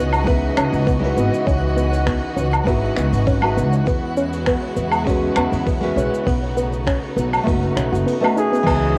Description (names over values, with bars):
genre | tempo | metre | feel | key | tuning
sunset chillout | 100 BPM | 4/4 | straight | unclear | A4 = 441 Hz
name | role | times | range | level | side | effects
nylon-string guitar | accompaniment | 0.0-9.0 s | E3 to B4 | -26 LUFS | equal | low-pass filter, cassette tape, analog delay
clear studio string section | sustained chords | 0.0-9.0 s | C#3 to B5 | -29 LUFS | equal | cassette tape
soft round pluck | arpeggios | 0.0-8.8 s | B3 to F#4 | -26 LUFS | equal | chorus, cassette tape, analog delay
upright bass | bass | 0.0-9.0 s | F#1 to E2 | -24 LUFS | equal | tube saturation
twinkling granular texture | texture | 0.0-8.7 s | F#5 | -36 LUFS | equal | built-in reverb, cassette tape
vintage brush drum kit | drums | 0.1-8.8 s | cabasa, crash cymbal, finger snaps, hi-hat, woodblock | -28 LUFS | equal | cassette tape
electronic kick drum | drums | 0.3-8.8 s | none | -25 LUFS | equal | cassette tape
breathy flugelhorn | melody | 8.4-9.0 s | G#4 | -22 LUFS | equal | cassette tape
room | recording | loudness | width
moderate spring reverb, RT60 2.2 s | home recording on cassette | -19 LUFS | mono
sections
0.0-8.7 A section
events
none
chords
0.0 C#m11; 3.9 E69; 6.3 B9